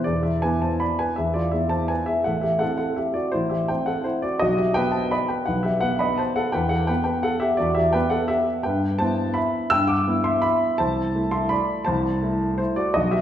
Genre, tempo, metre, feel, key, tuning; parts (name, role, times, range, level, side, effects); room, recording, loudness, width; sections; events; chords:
classical, piano waltz; 168 BPM; 3/4; uneven beats, rubato; E minor; A4 = 440 Hz
warm baby grand piano; solo; 0.0-13.2 s; A1 to E6; -20 LUFS; equal
wet recital hall reverb, RT60 1.7 s; heard from further back in the room; -20 LUFS; side -10 dB against mid
0.1-13.2 A section
0.1 E7; 2.3 Am7; 4.4 B; 6.6 Em; 8.7 Em/G; 10.8 Am/C